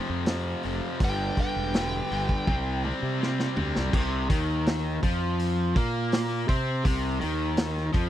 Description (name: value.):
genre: blues rock power trio and southern rock.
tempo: 82 BPM.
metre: 4/4.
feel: straight.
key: unclear.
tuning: A4 = 441 Hz.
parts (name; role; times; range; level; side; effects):
cranked stack guitar; riff; 0.0-8.1 s; F2 to C4; -29 LUFS; left 1 dB; overdrive.
fuzz fingered electric bass; bass; 0.1-8.1 s; E1 to C3; -29 LUFS; equal; overdrive.
vintage drum kit; drums; 0.3-8.1 s; crash cymbal, hi-hat, kick drum, snare drum, toms; -27 LUFS; equal; none.
bluesy overdriven lead guitar; melody; 1.0-2.8 s; G5; -32 LUFS; equal; distortion, slapback echo.
smooth overdriven lead guitar; second line; 1.0-2.4 s; B4; -38 LUFS; right 3 dB; none.
room: little or no reverb.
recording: dry, close 1970s-style studio recording.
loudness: -24 LUFS.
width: side -12 dB against mid.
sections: 0.0-3.9 A section; 3.9-8.1 B section.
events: drum fill 2.5-3.9.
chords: 0.0 F5; 1.0 G; 2.5 C5.